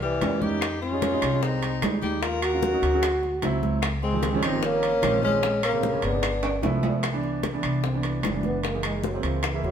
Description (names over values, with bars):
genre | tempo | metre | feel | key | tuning
Afro-Cuban jazz | 150 BPM | 4/4 | straight | unclear | A4 = 440 Hz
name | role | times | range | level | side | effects
mellow trombone | melody | 0.0-9.7 s | E3 to Gb4 | -27 LUFS | equal | none
clear tenor saxophone | second line | 0.0-6.6 s | G3 to Bb4 | -28 LUFS | left 4 dB | none
upright bass | bass | 0.0-9.7 s | F#1 to F2 | -29 LUFS | equal | none
bongos | percussion | 0.0-9.7 s | none | -34 LUFS | left 7 dB | none
congas | percussion | 0.0-9.7 s | none | -32 LUFS | right 1 dB | none
warm concert grand piano | accompaniment | 0.2-9.7 s | Db3 to Ab4 | -30 LUFS | right 5 dB | none
timbales | percussion | 0.2-9.6 s | none | -33 LUFS | right 3 dB | none
claves | percussion | 0.6-9.6 s | none | -38 LUFS | left 6 dB | none
room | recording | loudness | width
wet stone room reverb, RT60 1.2 s | band playing live in one room | -22 LUFS | side -8 dB against mid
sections
0.0-7.0 A section; 7.0-9.7 B section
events
drum fill 6.4-7.0; trombone solo 7.0-9.7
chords
0.0 C7b9; 0.6 Fm9; 2.2 Ebm9; 3.0 D9; 3.8 Dbmaj9#11; 5.4 Bbm7; 6.2 G13; 7.0 Cmaj9; 8.6 F#13